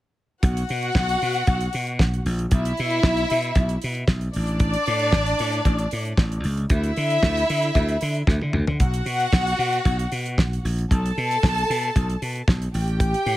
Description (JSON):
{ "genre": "disco", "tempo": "115 BPM", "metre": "4/4", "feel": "straight", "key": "B minor", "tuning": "A4 = 440 Hz", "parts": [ { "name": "warm studio violin section", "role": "second line", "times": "0.4-13.4 s", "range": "D4 to A5", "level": "-24 LUFS", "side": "left 1 dB", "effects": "none" }, { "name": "slap bass", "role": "bass", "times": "0.4-13.4 s", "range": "A1 to D3", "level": "-24 LUFS", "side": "equal", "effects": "none" }, { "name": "damped 70s drum kit", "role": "drums", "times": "0.4-13.4 s", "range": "hi-hat, kick drum, snare drum, toms", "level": "-23 LUFS", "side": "equal", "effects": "none" } ], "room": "small room ambience", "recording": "none", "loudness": "-20 LUFS", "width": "side -15 dB against mid", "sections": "0.4-13.4 A section", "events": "drum fill 8.3-8.8", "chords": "0.4 B5; 2.5 E5/B; 4.4 Asus4; 6.7 Dsus2; 8.8 B5; 10.9 Asus2/B; 12.7 A7(no3)" }